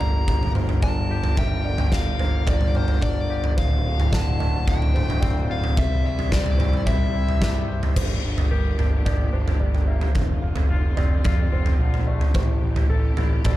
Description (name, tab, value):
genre	post-rock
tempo	109 BPM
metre	4/4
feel	straight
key	unclear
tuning	A4 = 441 Hz
part	dark smooth lead guitar	melody	0.0-7.6 s	C5 to Bb5	-30 LUFS	left 2 dB	overdrive, digital delay
part	clear studio string section	sustained chords	0.0-13.6 s	C3 to C5	-37 LUFS	equal	none
part	felt-muted upright piano	arpeggios	0.0-13.6 s	A4 to F5	-36 LUFS	right 3 dB	digital delay
part	twangy electric guitar	arpeggios	0.0-13.6 s	D2 to C5	-34 LUFS	left 5 dB	digital delay
part	fuzz picked electric bass	bass	0.0-13.6 s	D1 to F2	-26 LUFS	equal	overdrive
part	big rock drum kit	drums	0.0-13.6 s	crash cymbal, kick drum, snare drum, toms	-21 LUFS	equal	none
room	studio reverb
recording	dark, warm production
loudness	-19 LUFS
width	side -15 dB against mid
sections	0.0-8.0 A section; 8.0-13.6 B section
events	none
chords	0.0 Gm7; 3.6 Dm7; 5.8 C; 8.0 Gm7; 10.2 Dm7/F; 12.4 Am7